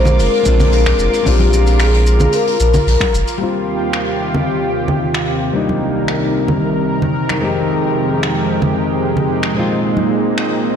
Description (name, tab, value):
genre	sunset chillout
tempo	112 BPM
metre	4/4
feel	straight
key	unclear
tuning	A4 = 441 Hz
part	vibraphone with soft mallets	melody	0.0-3.1 s	G4 to C5	-18 LUFS	left 4 dB	digital delay
part	nylon-string guitar	accompaniment	0.0-10.8 s	F2 to G4	-21 LUFS	moving between left 6 dB and right 3 dB	auto-pan, low-pass filter, ping-pong delay
part	lush unison pad	sustained chords	0.0-10.8 s	C2 to D6	-18 LUFS	equal	chorus
part	warm sub bass	bass	0.0-3.2 s	F1 to Bb1	-13 LUFS	equal	tube saturation
part	jazz brush drum kit	drums	0.1-10.5 s	finger snaps, hi-hat, shaker	-24 LUFS	equal	soft clipping on snare
part	congas	percussion	0.1-10.1 s	none	-21 LUFS	right 2 dB	none
part	electronic kick drum	drums	0.5-3.1 s	none	-20 LUFS	equal	none
room	moderate lush hall reverb, RT60 2.6 s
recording	blown-out, overdriven recording, overdrive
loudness	-13 LUFS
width	side -8 dB against mid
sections	0.0-3.4 A section; 3.4-10.8 B section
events	filter sweep on nylon-string guitar 3.4-10.8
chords	0.0 Bb7; 3.4 Eb69; 5.5 Cm7; 7.4 Fm11; 9.6 Bb9sus4